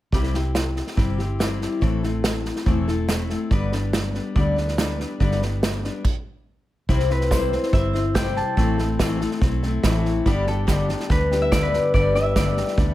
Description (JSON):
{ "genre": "honky-tonk and classic country", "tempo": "142 BPM", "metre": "4/4", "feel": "straight", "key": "G major", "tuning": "A4 = 440 Hz", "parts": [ { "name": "picked steel-string acoustic guitar", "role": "accompaniment", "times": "0.1-12.9 s", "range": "G2 to C5", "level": "-25 LUFS", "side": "left 3 dB", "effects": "none" }, { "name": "vintage muted fingered electric bass", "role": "bass", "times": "0.1-12.9 s", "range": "E1 to D2", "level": "-25 LUFS", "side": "right 1 dB", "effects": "none" }, { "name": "unplugged drum kit", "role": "drums", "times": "0.1-12.9 s", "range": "crash cymbal, hi-hat, kick drum, snare drum", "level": "-24 LUFS", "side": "right 1 dB", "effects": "none" }, { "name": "concert harp", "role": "melody", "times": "7.1-12.9 s", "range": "A4 to A5", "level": "-24 LUFS", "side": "left 1 dB", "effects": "none" } ], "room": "light reverb", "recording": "close, detailed microphones", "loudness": "-19 LUFS", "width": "side -15 dB against mid", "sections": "0.1-6.9 A section; 6.9-12.9 B section", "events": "stop 6.0-6.9", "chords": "0.1 C; 1.8 Am; 3.5 G; 6.9 C; 8.6 Am; 10.3 G" }